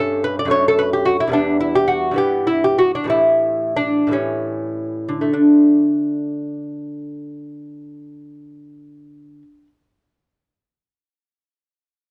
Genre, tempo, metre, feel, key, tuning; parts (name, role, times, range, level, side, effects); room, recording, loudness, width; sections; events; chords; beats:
classical, baroque-style dance for lute; 48-76 BPM (dotted quarters); 6/8; rubato; D major; A4 = 440 Hz
lute; solo; 0.0-9.7 s; E2 to D5; -18 LUFS; equal
light reverb; dry, close 1970s-style studio recording; -18 LUFS; mono
0.0-5.4 A section; 5.4-10.1 B section
slowing down 0.5-5.4
0.0 A7/G; 0.5 D/F#; 1.3 Em; 2.2 Em/G; 3.1 A7; 5.4 D5
0.52 | 1.33 2.18 | 3.10 4.16 | 5.36 6.55 | 7.75 8.93